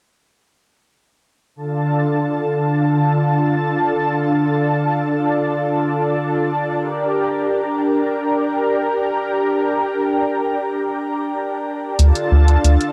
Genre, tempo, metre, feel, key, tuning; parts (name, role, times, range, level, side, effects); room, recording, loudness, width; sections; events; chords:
synthwave; free time; D minor; A4 = 440 Hz
analog string pad; sustained chords; 1.6-12.9 s; D3 to A5; -20 LUFS; equal; ensemble chorus, vintage 12-bit sampler grit, shimmer reverb
round analog bass; bass; 12.0-12.8 s; D2; -13 LUFS; equal; tube saturation
electronic hi-hat; drums; 12.0-12.9 s; -27 LUFS; equal; overdrive, cassette tape
moderate lush hall reverb, RT60 2.3 s; home recording on cassette; -19 LUFS; mono
1.6-12.9 A section
1.6 Dm; 6.8 Gm; 12.0 Dm